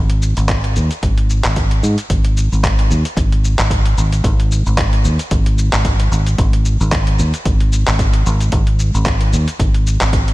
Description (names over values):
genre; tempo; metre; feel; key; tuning
sunset chillout; 112 BPM; 4/4; swing 56% on 16ths; unclear; A4 = 440 Hz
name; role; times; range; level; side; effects
fingered electric bass; bass; 0.0-10.3 s; Ab1 to Ab2; -14 LUFS; equal; tube saturation
dusty soul sampler-style drum kit; drums; 0.1-10.3 s; handclaps, hi-hat, shaker; -22 LUFS; equal; studio reverb
electronic kick drum; drums; 0.5-10.2 s; none; -18 LUFS; equal; overdrive, studio reverb
room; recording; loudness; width
digital ambience; none; -13 LUFS; side -19 dB against mid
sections
0.0-2.1 A section; 2.1-10.3 B section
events
none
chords
none